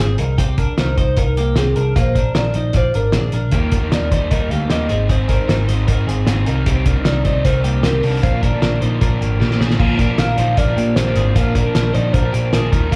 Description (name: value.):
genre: jangly indie pop.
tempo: 153 BPM.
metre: 4/4.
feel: straight.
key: unclear.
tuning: A4 = 439 Hz.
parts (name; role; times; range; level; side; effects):
hollow clarinet-like synth lead; melody; 0.0-12.8 s; Ab4 to F5; -26 LUFS; equal; chorus.
twelve-string electric guitar; arpeggios; 0.0-13.0 s; Bb3 to D5; -27 LUFS; equal; subtle chorus.
vintage muted picked electric bass; bass; 0.0-13.0 s; Ab1 to Bb2; -20 LUFS; equal; none.
cloth-damped thuddy drum kit; drums; 0.0-13.0 s; crash cymbal, hi-hat, kick drum, snare drum; -21 LUFS; equal; none.
crunchy overdriven guitar; accompaniment; 3.5-13.0 s; Ab2 to Eb4; -27 LUFS; equal; none.
room: light reverb.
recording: live gig heard through the venue's PA, club reverb.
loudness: -17 LUFS.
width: mono.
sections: 0.0-9.8 A section; 9.8-13.0 B section.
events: drum fill 9.4-9.8.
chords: 0.2 Cm; 2.0 Bb; 3.5 Eb; 4.9 Ab; 6.5 Cm; 8.2 Bb.